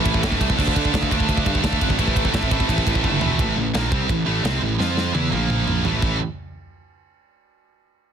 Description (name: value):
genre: heavy metal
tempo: 171 BPM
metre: 4/4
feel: straight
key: A phrygian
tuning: A4 = 440 Hz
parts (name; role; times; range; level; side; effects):
- warm studio string section; sustained chords; 0.0-3.4 s; C4 to F5; -34 LUFS; equal; none
- heavy high-gain guitar; riff; 0.0-6.2 s; A2 to F4; -25 LUFS; right 18 dB; distortion
- scooped high-gain guitar; riff; 0.0-6.2 s; A2 to F4; -26 LUFS; left 12 dB; distortion
- scooped high-gain guitar; riff; 0.0-3.4 s; A2 to D4; -27 LUFS; right 1 dB; distortion
- fuzz picked electric bass; bass; 0.1-6.2 s; E1 to D3; -24 LUFS; right 1 dB; overdrive
- tight metal drum kit; drums; 0.1-6.1 s; crash cymbal, kick drum, ride cymbal, snare drum, toms; -23 LUFS; right 1 dB; none
room: little or no reverb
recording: dense, heavily limited modern master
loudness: -18 LUFS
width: side -8 dB against mid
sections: 0.0-3.4 A section; 3.4-6.2 B section; 6.2-7.6 C section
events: drum fill 3.0-3.4, 4.8-6.2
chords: 0.0 Am; 0.6 Dm; 2.0 Am; 4.8 F5; 5.1 E5; 5.3 Bb5; 5.8 A5; 6.2 N.C.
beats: 0.24 | 0.59 0.94 1.29 1.64 | 1.99 2.34 2.69 3.04 | 3.39 3.74 4.09 4.44 | 4.79 5.14 5.50 5.85